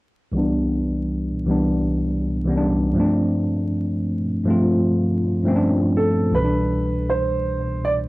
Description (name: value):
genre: hip hop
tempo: 80 BPM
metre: 4/4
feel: swing 65% on 16ths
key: C major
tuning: A4 = 440 Hz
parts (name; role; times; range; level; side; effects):
- mellow tine electric piano; accompaniment; 0.3-8.1 s; C2 to F4; -19 LUFS; equal; medium stereo tremolo, cassette tape, low-pass filter
- warm upright piano; melody; 6.0-7.9 s; A4 to D5; -22 LUFS; right 2 dB; cassette tape, tape echo
room: wet studio reverb, RT60 0.6 s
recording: home recording on cassette, vinyl crackle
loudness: -18 LUFS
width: side -20 dB against mid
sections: 0.3-6.3 A section; 6.3-8.1 B section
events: filter sweep on tine electric piano 0.3-6.3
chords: 0.3 Cmaj7; 3.0 G9sus4; 6.3 Cmaj7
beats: | 0.34 1.09 1.84 2.59 | 3.34 4.09 4.84 5.59 | 6.34 7.09 7.84